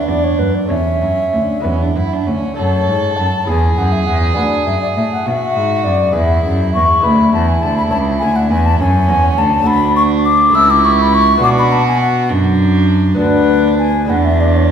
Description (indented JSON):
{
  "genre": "classical, baroque-style sonata movement with continuo",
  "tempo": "68 BPM (dotted quarters)",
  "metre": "6/8",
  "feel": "rubato",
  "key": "A major",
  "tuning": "A4 = 440 Hz",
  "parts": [
    { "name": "baroque flute", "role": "melody", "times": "0.0-14.7 s", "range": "B4 to E6", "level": "-15 LUFS", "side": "left 3 dB", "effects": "none" },
    { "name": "warm violin", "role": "second line", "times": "0.0-14.7 s", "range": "C#4 to A4", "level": "-19 LUFS", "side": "right 5 dB", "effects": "none" },
    { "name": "lute", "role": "accompaniment", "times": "0.0-14.7 s", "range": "D2 to C#5", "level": "-22 LUFS", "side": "left 2 dB", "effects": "none" },
    { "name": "dark cello", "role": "bass", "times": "0.0-14.7 s", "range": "C#2 to B2", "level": "-15 LUFS", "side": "right 1 dB", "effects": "none" }
  ],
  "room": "wet recital hall reverb, RT60 1.6 s",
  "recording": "recorded in a church or concert hall",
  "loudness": "-11 LUFS",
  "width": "side -8 dB against mid",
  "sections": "0.0-2.6 A section; 2.6-14.7 B section",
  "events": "none",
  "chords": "0.0 Bm; 0.7 A/E; 1.6 E; 2.6 F#m; 3.5 C#m/E; 4.4 Bm/D; 6.2 E; 7.0 E7/D; 7.9 A/C#; 9.7 D; 10.5 A/C#; 11.4 Bm; 13.2 Bm/D; 14.1 E7"
}